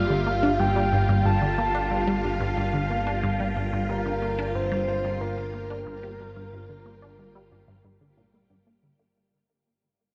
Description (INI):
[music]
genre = ambient, sequencer-driven space music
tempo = 91 BPM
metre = 4/4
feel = straight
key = G minor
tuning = A4 = 441 Hz
[part]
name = soft octave-layered synth lead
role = melody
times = 0.0-8.5 s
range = Bb4 to A5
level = -32 LUFS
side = equal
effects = chorus, delay
[part]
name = phased string machine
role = sustained chords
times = 0.0-9.2 s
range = G3 to G4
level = -32 LUFS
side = equal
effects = ensemble chorus, phaser
[part]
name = resonant blip pluck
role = riff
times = 0.0-9.1 s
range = G2 to D4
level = -30 LUFS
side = equal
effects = chorus, phaser, delay
[part]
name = analog drone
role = bass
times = 0.0-9.1 s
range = G1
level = -34 LUFS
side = equal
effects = chorus
[sound]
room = wet huge ambient reverb, RT60 7.8 s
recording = worn, warbling old tape, cassette tape, warbly pitch drift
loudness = -25 LUFS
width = mono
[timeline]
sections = 0.0-9.2 A section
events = fade-out 0.0-9.2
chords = 0.0 Gm